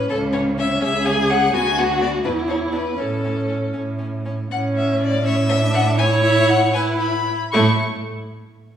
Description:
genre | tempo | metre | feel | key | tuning
quick classical-period movement for string quartet | 74-84 BPM (dotted quarters) | 6/8 | rubato | A major | A4 = 440 Hz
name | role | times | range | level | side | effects
rich violin | melody | 0.0-7.8 s | A4 to C#6 | -22 LUFS | left 4 dB | none
rich viola | accompaniment | 0.0-7.8 s | A3 to G#4 | -22 LUFS | right 1 dB | none
clear violin | second line | 0.1-7.8 s | B3 to E5 | -24 LUFS | equal | none
rich cello | bass | 0.1-7.8 s | C#2 to A2 | -23 LUFS | right 2 dB | none
room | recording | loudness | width
wet recital hall reverb, RT60 1.5 s | recorded in a church or concert hall, small room ambience | -17 LUFS | side -9 dB against mid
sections
0.0-4.5 A section; 4.5-7.5 B section; 7.5-8.8 C section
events
none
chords
0.1 C#m; 1.5 Bm/D; 2.3 Bmadd11/E; 3.0 A; 6.0 A5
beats
| 0.10 0.82 | 1.54 2.25 | 2.99 3.75 | 4.51 5.25 | 5.99 6.75 | 7.54

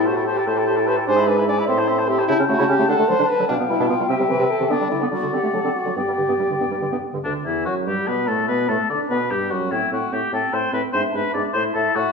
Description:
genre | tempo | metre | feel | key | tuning
quick classical-period movement for wind quintet | 98 BPM (dotted quarters) | 6/8 | straight | G major | A4 = 438 Hz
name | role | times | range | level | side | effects
hollow concert flute | melody | 0.0-12.1 s | D4 to C6 | -27 LUFS | left 7 dB | none
mellow oboe | second line | 0.0-12.1 s | D4 to G5 | -24 LUFS | left 3 dB | none
clear French horn | accompaniment | 0.0-12.1 s | D3 to D5 | -23 LUFS | left 1 dB | none
mellow clarinet | accompaniment | 0.0-12.1 s | D3 to G4 | -26 LUFS | right 4 dB | none
dark bassoon | bass | 0.0-12.0 s | D2 to D3 | -25 LUFS | right 2 dB | none
room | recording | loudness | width
wet recital hall reverb, RT60 1.4 s | none | -18 LUFS | side -4 dB against mid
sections
0.0-7.2 A section; 7.2-12.1 A section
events
none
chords
0.0 Am7; 1.1 E7/G#; 1.7 Am; 2.3 A7/C#; 2.9 D; 3.5 G7/B; 4.1 C; 4.7 G5/D; 5.3 D; 6.0 G5; 7.2 G/D; 8.5 D5; 9.1 G; 9.7 Am7; 10.9 E7/G#; 11.5 A5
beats
0.47 | 1.08 1.69 | 2.29 2.89 | 3.50 4.10 | 4.71 5.33 | 5.97 6.60 | 7.24 7.87 | 8.49 9.11 | 9.72 10.32 | 10.93 11.54

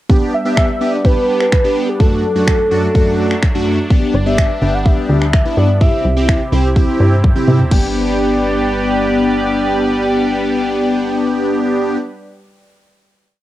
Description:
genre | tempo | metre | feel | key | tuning
dance-pop | 126 BPM | 4/4 | straight | G major | A4 = 440 Hz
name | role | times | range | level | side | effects
big bright polysynth | accompaniment | 0.1-12.0 s | F#2 to G4 | -16 LUFS | equal | chorus, sidechain pumping, cassette tape
sweeping resonant pad | sustained chords | 0.1-12.0 s | C3 to D5 | -23 LUFS | right 1 dB | chorus, sidechain pumping, cassette tape
pop drum kit | drums | 0.1-7.8 s | crash cymbal, finger snaps, kick drum, toms | -14 LUFS | equal | cassette tape
warm velvety synth lead | melody | 0.3-12.0 s | G4 to G5 | -20 LUFS | equal | chorus, cassette tape, tape echo
plucky analog bass | bass | 4.1-12.0 s | G1 to C3 | -17 LUFS | equal | sidechain pumping
room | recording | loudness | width
light reverb, digital ambience | home recording on cassette | -12 LUFS | side -14 dB against mid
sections
0.1-7.7 verse; 7.7-11.5 final chord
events
drum fill 7.2-7.7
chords
0.1 G; 2.0 D/F#; 3.9 G; 5.8 C; 7.7 G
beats
| 0.10 0.57 1.05 1.52 | 2.00 2.48 2.95 3.43 | 3.90 4.38 4.86 5.33 | 5.81 6.29 6.76 7.24 | 7.71 8.19 8.67 9.14 | 9.62 10.10 10.57 11.05

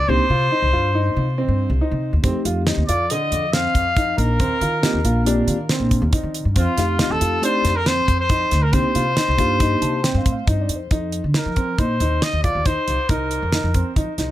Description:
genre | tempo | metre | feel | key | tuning
progressive instrumental, band music in an uneven meter | 138 BPM | 5/4 | straight | F mixolydian | A4 = 440 Hz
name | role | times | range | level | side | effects
clear trumpet | melody | 0.0-14.0 s | F4 to F5 | -22 LUFS | left 1 dB | digital delay
upright bass | bass | 0.0-14.3 s | Bb1 to F3 | -21 LUFS | equal | none
mellow tine electric piano | accompaniment | 0.1-10.9 s | A3 to A5 | -24 LUFS | left 1 dB | medium stereo tremolo
clear grand piano | arpeggios | 0.1-14.3 s | D3 to F4 | -26 LUFS | right 2 dB | digital delay
damped 70s drum kit | drums | 2.2-14.3 s | hi-hat, kick drum, snare drum | -21 LUFS | equal | none
room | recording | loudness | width
little or no reverb | none | -17 LUFS | side -14 dB against mid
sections
0.0-10.9 A section; 10.9-14.3 B section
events
tine electric piano fill 9.6-10.9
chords
0.1 Cm; 2.2 F7; 4.4 Eb6; 6.6 F7; 8.7 Cm7; 10.9 F7sus4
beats
| 0.09 0.52 0.95 1.38 1.81 | 2.24 2.67 3.10 3.53 3.97 | 4.40 4.83 5.26 5.70 6.13 | 6.56 7.00 7.43 7.87 8.30 | 8.73 9.17 9.61 10.04 10.48 | 10.91 11.35 11.79 12.22 12.66 | 13.09 13.53 13.96

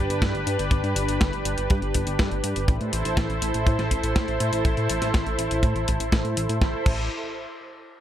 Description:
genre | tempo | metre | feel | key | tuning
italo disco | 122 BPM | 4/4 | straight | A minor | A4 = 442 Hz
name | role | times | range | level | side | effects
lush unison pad | sustained chords | 0.0-6.8 s | D4 to C5 | -27 LUFS | equal | chorus
chorused synth bass | bass | 0.0-7.1 s | G1 to A2 | -27 LUFS | equal | none
clean 12-bit digital drum machine | drums | 0.1-7.0 s | crash cymbal, hi-hat, snare drum | -30 LUFS | left 1 dB | none
kick drum | drums | 0.2-7.0 s | none | -22 LUFS | equal | none
room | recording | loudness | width
little or no reverb | none | -22 LUFS | side -11 dB against mid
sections
0.0-6.6 A section; 6.6-8.0 B section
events
none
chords
0.0 G; 2.7 Am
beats
0.22 | 0.71 1.21 1.70 2.19 | 2.68 3.17 3.67 4.16 | 4.65 5.14 5.63 6.12 | 6.62

